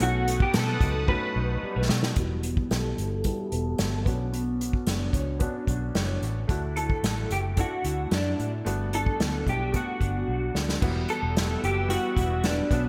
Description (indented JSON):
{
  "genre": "indie pop, bedroom pop",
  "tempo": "111 BPM",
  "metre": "4/4",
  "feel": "straight",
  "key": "unclear",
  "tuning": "A4 = 438 Hz",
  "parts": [
    { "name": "electric guitar through a small old amp", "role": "melody", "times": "0.0-12.8 s", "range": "D4 to B4", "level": "-33 LUFS", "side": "equal", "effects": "analog chorus, low-pass filter" },
    { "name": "bright upright piano", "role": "accompaniment", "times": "0.0-12.9 s", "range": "F#3 to A4", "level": "-37 LUFS", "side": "equal", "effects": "cassette tape, low-pass filter" },
    { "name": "electric guitar through a small old amp", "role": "accompaniment", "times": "0.0-12.9 s", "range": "B2 to C#5", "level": "-37 LUFS", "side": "equal", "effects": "ensemble chorus, warbly pitch drift, low-pass filter" },
    { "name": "phased analog pad", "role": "sustained chords", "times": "0.0-2.1, 10.8-12.9 s", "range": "B4 to E6", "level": "-42 LUFS", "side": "equal", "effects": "phaser, chorus" },
    { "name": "vintage muted fingered electric bass", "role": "bass", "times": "0.0-12.9 s", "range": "E1 to B2", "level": "-32 LUFS", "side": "equal", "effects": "none" },
    { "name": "unplugged drum kit", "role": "drums", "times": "0.0-12.8 s", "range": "crash cymbal, hi-hat, kick drum, snare drum", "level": "-30 LUFS", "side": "equal", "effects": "gated reverb" }
  ],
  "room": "moderate lush hall reverb, RT60 1.7 s, studio reverb",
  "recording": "bright 1980s-style digital production",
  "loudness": "-27 LUFS",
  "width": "mono",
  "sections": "0.0-2.2 A section; 2.2-10.8 B section; 10.8-12.9 C section",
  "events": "drum fill 1.1-2.2, 10.3-10.8; filter sweep 2.2-10.8",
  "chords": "0.0 B7; 2.2 Emadd9; 4.1 Bmadd9; 6.5 Dadd9; 8.7 Gmaj7; 10.8 Emadd9",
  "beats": "| 0.01 0.55 1.09 1.63 | 2.17 2.71 3.25 3.79 | 4.33 4.87 5.41 5.95 | 6.49 7.03 7.57 8.11 | 8.65 9.20 9.73 10.28 | 10.82 11.36 11.90 12.44"
}